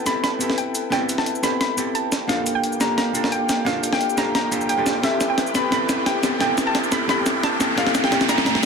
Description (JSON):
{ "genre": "liquid drum and bass", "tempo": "175 BPM", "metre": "4/4", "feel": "straight", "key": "unclear", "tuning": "A4 = 445 Hz", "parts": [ { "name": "soft round pluck", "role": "melody", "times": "0.0-8.7 s", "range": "E5 to B5", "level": "-24 LUFS", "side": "equal", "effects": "chorus, tape echo" }, { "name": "hollow-body jazz guitar", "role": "accompaniment", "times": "0.0-8.7 s", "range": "A3 to A4", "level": "-25 LUFS", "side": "equal", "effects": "ping-pong delay" }, { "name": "warm analog pad", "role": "sustained chords", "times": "0.0-8.7 s", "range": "G3 to G5", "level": "-29 LUFS", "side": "left 1 dB", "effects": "chorus" }, { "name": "riser", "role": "sound effects", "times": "0.8-8.7 s", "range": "none", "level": "-28 LUFS", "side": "equal", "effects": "none" }, { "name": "breakbeat sampler-style drum kit", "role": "drums", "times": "0.1-8.7 s", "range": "cabasa, hi-hat, snare drum", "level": "-23 LUFS", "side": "equal", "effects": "studio reverb" } ], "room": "moderate concert hall reverb, RT60 1.9 s", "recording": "none", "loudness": "-18 LUFS", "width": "side -5 dB against mid", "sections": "0.0-8.7 A section", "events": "build-up 0.0-8.7; drum fill 0.0-8.7; riser 0.8-8.7", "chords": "0.0 Am9; 2.1 Gm9; 5.0 Am9; 7.6 Gmadd9" }